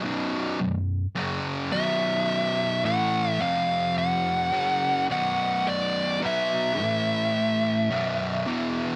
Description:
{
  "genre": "metal",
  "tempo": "53 BPM",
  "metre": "4/4",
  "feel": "straight",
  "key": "unclear",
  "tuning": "A4 = 440 Hz",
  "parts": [
    { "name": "fuzz guitar", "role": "riff", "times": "0.0-9.0 s", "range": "B1 to B3", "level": "-29 LUFS", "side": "equal", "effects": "distortion" },
    { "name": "fuzz lead guitar", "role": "melody", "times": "1.7-8.4 s", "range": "D5 to F#5", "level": "-27 LUFS", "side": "equal", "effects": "distortion, tape echo" }
  ],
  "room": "moderate studio ambience, RT60 0.5 s",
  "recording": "none",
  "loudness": "-25 LUFS",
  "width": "mono",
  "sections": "0.0-9.0 A section",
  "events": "none",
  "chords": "0.0 B5; 3.4 F5; 4.5 B5; 6.8 A5; 7.9 B5"
}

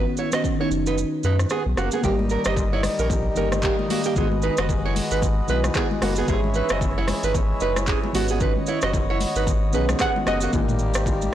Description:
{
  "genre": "afrobeats",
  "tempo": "113 BPM",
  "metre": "4/4",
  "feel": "swing 58% on 16ths",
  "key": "unclear",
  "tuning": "A4 = 440 Hz",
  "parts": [
    { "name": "mellow FM electric piano", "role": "accompaniment", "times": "0.0-11.3 s", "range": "D#3 to D#5", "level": "-28 LUFS", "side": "left 1 dB", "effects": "chorus, phaser" },
    { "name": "nylon-string guitar", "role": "riff", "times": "0.0-10.5 s", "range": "A#3 to D#5", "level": "-26 LUFS", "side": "right 5 dB", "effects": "slapback echo" },
    { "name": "saturated sub bass", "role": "bass", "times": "0.0-11.3 s", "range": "F#1 to F#2", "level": "-25 LUFS", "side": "left 1 dB", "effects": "tube saturation" },
    { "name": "afro-pop drum kit", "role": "drums", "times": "0.2-11.3 s", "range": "handclaps, hi-hat, kick drum, rim click, shaker, toms", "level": "-26 LUFS", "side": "equal", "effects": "soft clipping on snare" },
    { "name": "hand-pumped harmonium", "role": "sustained chords", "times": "2.0-11.3 s", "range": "D#3 to E5", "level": "-29 LUFS", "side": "left 1 dB", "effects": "none" },
    { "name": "congas", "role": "percussion", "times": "2.0-11.3 s", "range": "none", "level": "-32 LUFS", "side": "left 5 dB", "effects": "none" },
    { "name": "glassy wavetable pluck", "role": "melody", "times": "10.0-11.3 s", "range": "D#5 to F#5", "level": "-26 LUFS", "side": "equal", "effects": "chorus, slapback echo" }
  ],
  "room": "light reverb",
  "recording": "blown-out, overdriven recording, overdrive",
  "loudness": "-20 LUFS",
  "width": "side -11 dB against mid",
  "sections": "0.0-2.0 A section; 2.0-10.5 B section",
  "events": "kick muted 1.0-2.0",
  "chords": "0.0 Badd9; 2.0 D#; 4.2 G#m7; 6.3 C#m; 8.1 Badd9; 10.5 D#"
}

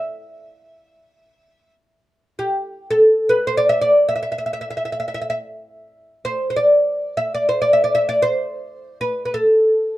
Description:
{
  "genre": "arabic",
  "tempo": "free time",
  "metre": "none",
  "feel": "none",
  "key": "E maqam bayati",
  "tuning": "A4 = 439 Hz",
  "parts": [
    { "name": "oud", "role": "solo", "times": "0.0-10.0 s", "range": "G4 to E5", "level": "-16 LUFS", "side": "equal", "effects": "none" }
  ],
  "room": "light reverb",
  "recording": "dark, warm production",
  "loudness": "-16 LUFS",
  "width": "side -15 dB against mid",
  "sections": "0.0-10.0 A section",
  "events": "none",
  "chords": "none"
}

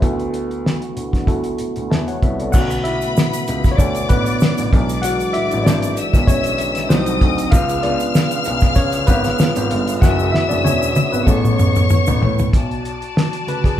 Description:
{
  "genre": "lush 1970s-style soul",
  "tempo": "96 BPM",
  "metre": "4/4",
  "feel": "swing 54% on 16ths",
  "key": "unclear",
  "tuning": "A4 = 437 Hz",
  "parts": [
    { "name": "tine electric piano", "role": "accompaniment", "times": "0.0-13.8 s", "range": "C#3 to A5", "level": "-21 LUFS", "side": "equal", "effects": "none" },
    { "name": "percussive tonewheel organ", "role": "sustained chords", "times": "0.0-12.5 s", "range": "B2 to B4", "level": "-27 LUFS", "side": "right 2 dB", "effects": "slow rotary speaker, overdrive" },
    { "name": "dark baby grand piano", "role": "bass", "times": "0.0-12.9 s", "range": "E1 to D3", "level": "-23 LUFS", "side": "equal", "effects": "none" },
    { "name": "cloth-damped thuddy drum kit", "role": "drums", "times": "0.0-13.8 s", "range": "crash cymbal, hi-hat, kick drum, snare drum, toms", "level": "-17 LUFS", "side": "equal", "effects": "none" },
    { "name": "warm studio string section", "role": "second line", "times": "2.5-13.8 s", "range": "F#4 to E#6", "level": "-23 LUFS", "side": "left 3 dB", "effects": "none" },
    { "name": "egg shaker", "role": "percussion", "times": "2.5-12.5 s", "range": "none", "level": "-34 LUFS", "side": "right 8 dB", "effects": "none" }
  ],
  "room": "moderate large studio reverb, RT60 0.9 s",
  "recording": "band playing live in one room",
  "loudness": "-15 LUFS",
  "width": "side -11 dB against mid",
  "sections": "0.0-2.5 A section; 2.5-12.5 B section; 12.5-13.8 C section",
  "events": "tine electric piano solo 2.5-12.5, 12.5-13.8; drum fill 10.0-12.5",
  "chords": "0.0 D69; 2.5 Bm7; 4.7 E7; 6.9 Cdim7; 7.5 C#7; 10.0 F#m7; 11.3 Amaj9; 12.5 Bm7"
}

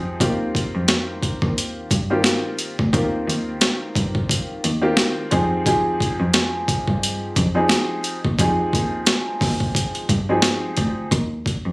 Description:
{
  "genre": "hip hop, boom-bap hip-hop",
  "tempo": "88 BPM",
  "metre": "4/4",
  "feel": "swing 57% on 16ths",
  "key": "Eb major",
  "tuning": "A4 = 438 Hz",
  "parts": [
    { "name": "dark upright piano", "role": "accompaniment", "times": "0.0-11.1 s", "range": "Eb3 to Ab4", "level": "-23 LUFS", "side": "equal", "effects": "high-pass filter, low-pass filter" },
    { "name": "warm cello", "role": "bass", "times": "0.0-11.7 s", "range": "D2 to G2", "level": "-24 LUFS", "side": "equal", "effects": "none" },
    { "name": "boom bap sampler-style drum kit", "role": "drums", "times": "0.2-11.6 s", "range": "hi-hat, kick drum, snare drum", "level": "-20 LUFS", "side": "equal", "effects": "overdrive" }
  ],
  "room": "little or no reverb",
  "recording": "recorded on a phone in the room, studio reverb",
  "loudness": "-18 LUFS",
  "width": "side -25 dB against mid",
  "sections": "0.2-11.7 A section",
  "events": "none",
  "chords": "0.2 Eb69; 5.3 Fm9; 11.1 N.C."
}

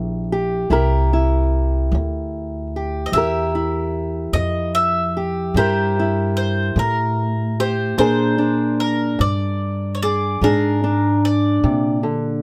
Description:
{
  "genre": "acoustic country blues, solo or duo",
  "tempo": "50 BPM (dotted quarters)",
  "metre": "12/8",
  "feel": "straight",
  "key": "unclear",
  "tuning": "A4 = 441 Hz",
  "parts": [
    { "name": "fingerpicked old ladder-braced acoustic guitar", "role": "accompaniment", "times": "0.0-12.4 s", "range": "Bb2 to Bb4", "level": "-23 LUFS", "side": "equal", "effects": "none" },
    { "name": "upright bass", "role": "bass", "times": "0.0-12.4 s", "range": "Bb1 to Bb2", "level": "-23 LUFS", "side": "equal", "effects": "none" },
    { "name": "bowl-back mandolin", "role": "melody", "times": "3.1-12.4 s", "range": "Bb4 to E5", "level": "-26 LUFS", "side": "equal", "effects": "none" }
  ],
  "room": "light reverb",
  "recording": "none",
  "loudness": "-19 LUFS",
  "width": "mono",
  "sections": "0.0-12.4 A section",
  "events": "none",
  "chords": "0.0 C7; 8.0 Bb7"
}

